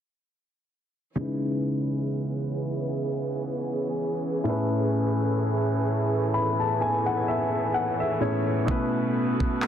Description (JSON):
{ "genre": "contemporary R&B", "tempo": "64 BPM", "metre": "4/4", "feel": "swing 54% on 16ths", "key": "C# minor", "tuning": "A4 = 440 Hz", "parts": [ { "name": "warm baby grand piano", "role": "accompaniment", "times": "1.2-9.7 s", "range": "A2 to B5", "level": "-25 LUFS", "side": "left 1 dB", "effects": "low-pass filter" }, { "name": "warm studio string section", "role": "sustained chords", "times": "1.2-9.7 s", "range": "E3 to G#4", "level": "-30 LUFS", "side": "right 1 dB", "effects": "low-pass filter" }, { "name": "smooth R&B drum kit", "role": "drums", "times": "8.7-9.7 s", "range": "handclaps, kick drum", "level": "-26 LUFS", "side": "right 1 dB", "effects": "soft clipping on snare" } ], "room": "light reverb", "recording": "dense, heavily limited modern master", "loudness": "-24 LUFS", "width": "side -9 dB against mid", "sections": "1.2-9.7 A section", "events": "filter sweep 1.2-9.7; grand piano fill 5.9-8.7", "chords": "1.2 C#m7; 4.5 Amaj7; 8.7 B7sus4" }